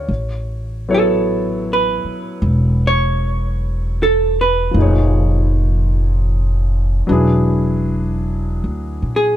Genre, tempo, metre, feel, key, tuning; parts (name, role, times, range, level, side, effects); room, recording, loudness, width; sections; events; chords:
jazz ballad; 52 BPM; 4/4; swing 67% on 8ths; A4 = 441 Hz
warm concert grand piano; accompaniment; 0.0-9.4 s; A#2 to G5; -21 LUFS; left 2 dB
upright bass; bass; 0.0-9.4 s; E1 to A#2; -17 LUFS; equal
vintage hollow-body jazz guitar; melody; 0.9-9.4 s; G#4 to C#5; -17 LUFS; right 3 dB
little or no reverb; dark, warm production; -14 LUFS; side -12 dB against mid
0.0-9.4 A section
hollow-body jazz guitar solo 0.0-9.4
0.1 Aadd9; 4.8 Fm7b5; 7.1 E9